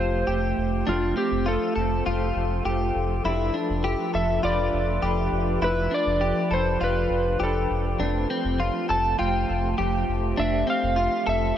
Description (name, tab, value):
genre	dream pop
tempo	101 BPM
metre	4/4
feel	straight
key	F lydian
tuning	A4 = 440 Hz
part	electric slide guitar	melody	0.0-11.6 s	F4 to A5	-27 LUFS	equal	digital delay
part	clean electric guitar	accompaniment	0.0-11.6 s	F3 to B4	-33 LUFS	right 2 dB	tremolo, lush chorus
part	warbly tape-like pad	sustained chords	0.0-11.6 s	F3 to B4	-30 LUFS	right 1 dB	chorus, built-in reverb
part	clean electric guitar	arpeggios	0.0-11.6 s	C4 to A4	-28 LUFS	left 2 dB	analog chorus, digital delay
part	sub bass with octave	bass	0.0-11.5 s	F1	-27 LUFS	equal	none
room	moderate huge ambient reverb, RT60 7.7 s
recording	none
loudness	-22 LUFS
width	side -10 dB against mid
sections	0.0-11.6 A section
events	none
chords	0.0 Fadd9; 3.2 Gadd9/F; 8.0 Fadd9